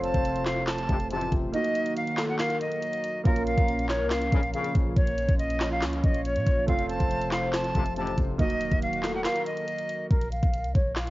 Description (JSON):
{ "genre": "hip hop, trap", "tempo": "140 BPM", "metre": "4/4", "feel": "half-time", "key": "Bb harmonic minor", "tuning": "A4 = 441 Hz", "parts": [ { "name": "bright silver concert flute", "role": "melody", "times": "0.0-11.1 s", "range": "Bb4 to A5", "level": "-30 LUFS", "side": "equal", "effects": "low-pass filter, cassette tape" }, { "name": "soft octave-layered synth lead", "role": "second line", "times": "0.0-9.7 s", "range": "A4 to Db5", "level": "-34 LUFS", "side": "left 2 dB", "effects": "chorus, phaser, cassette tape, tape echo, plate reverb" }, { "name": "warm concert grand piano", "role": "accompaniment", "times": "0.0-10.1 s", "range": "A3 to Gb4", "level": "-34 LUFS", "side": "right 5 dB", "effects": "cassette tape, plate reverb" }, { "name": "warm analog pad", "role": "sustained chords", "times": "0.0-10.1 s", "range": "C3 to Gb4", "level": "-35 LUFS", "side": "equal", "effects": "chorus, cassette tape" }, { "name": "clean 808-style bass", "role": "bass", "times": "0.0-11.1 s", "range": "Eb1 to Bb2", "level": "-30 LUFS", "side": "equal", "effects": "none" }, { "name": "trap drum kit", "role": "drums", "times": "0.0-11.1 s", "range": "handclaps, hi-hat, kick drum, snare drum", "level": "-27 LUFS", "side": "equal", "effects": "cassette tape" }, { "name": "clear brass ensemble", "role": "stabs", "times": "0.9-1.5, 4.3-4.9, 7.8-8.4 s", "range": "A1 to Db3", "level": "-33 LUFS", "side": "left 5 dB", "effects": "cassette tape" } ], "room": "moderate booth ambience, RT60 0.2 s", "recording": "home recording on cassette, vinyl crackle, nothing above 7.5 kHz", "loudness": "-24 LUFS", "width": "side -18 dB against mid", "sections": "0.0-10.1 A section", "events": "kick muted 1.5-3.3; break 9.3-10.1", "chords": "0.0 F; 1.5 Ebm; 3.3 Bbm; 6.7 F; 8.4 Ebm; 10.1 Bbm" }